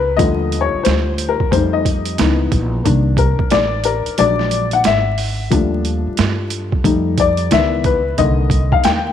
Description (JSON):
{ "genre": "hip hop, jazz-hop", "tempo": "90 BPM", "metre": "4/4", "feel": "swing 63% on 16ths", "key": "C dorian", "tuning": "A4 = 440 Hz", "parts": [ { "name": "dark upright piano", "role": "accompaniment", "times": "0.0-9.1 s", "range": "D3 to G5", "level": "-16 LUFS", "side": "left 6 dB", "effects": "none" }, { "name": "upright bass", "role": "bass", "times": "0.0-9.1 s", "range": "Ab1 to G2", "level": "-19 LUFS", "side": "right 1 dB", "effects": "none" }, { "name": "boom bap sampler-style drum kit", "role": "drums", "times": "0.2-9.0 s", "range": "hi-hat, kick drum, snare drum", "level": "-19 LUFS", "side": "right 3 dB", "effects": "overdrive" } ], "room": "light reverb", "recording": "1960s-style stereo, vinyl crackle", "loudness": "-14 LUFS", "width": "side -9 dB against mid", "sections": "0.0-9.1 A section", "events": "upright piano solo 0.0-9.1", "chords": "0.2 Ebmaj9#11; 1.5 F9; 2.2 Dbm7; 2.8 Cm7; 4.2 Bbaug7; 5.5 Ebmaj9#11; 6.8 F9; 7.5 Dbm7; 8.2 Cm7" }